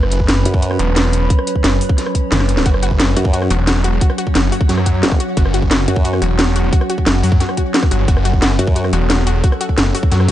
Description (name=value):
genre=dark technical drum and bass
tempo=177 BPM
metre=4/4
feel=straight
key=F# minor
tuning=A4 = 440 Hz
part: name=metallic inharmonic drone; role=sustained chords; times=0.0-10.3 s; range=F#3 to B4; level=-22 LUFS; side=equal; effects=chorus, built-in reverb, sidechain pumping
part: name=snarling distorted saw bass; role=bass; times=0.0-10.3 s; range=E1 to F#2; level=-16 LUFS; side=equal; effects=distortion, tube saturation, sidechain pumping
part: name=drum and bass drum kit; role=drums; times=0.0-10.3 s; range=hi-hat, rim click, snare drum, toms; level=-18 LUFS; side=equal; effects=none
part: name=electronic kick drum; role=drums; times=0.2-10.3 s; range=none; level=-15 LUFS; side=equal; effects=none
part: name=formant-sweep wobble bass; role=bass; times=0.5-0.8, 3.2-6.2, 8.6-8.9 s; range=F#1 to F#2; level=-17 LUFS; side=equal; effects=chorus
part: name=analog pluck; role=arpeggios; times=2.7-10.3 s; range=F#4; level=-25 LUFS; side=left 3 dB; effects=chorus, sidechain pumping, digital delay
room=little or no reverb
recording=nothing above 10.4 kHz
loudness=-12 LUFS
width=side -13 dB against mid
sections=0.0-10.3 A section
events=kick drops out 2.3-2.7; drum fill 2.3-2.7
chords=0.0 F#5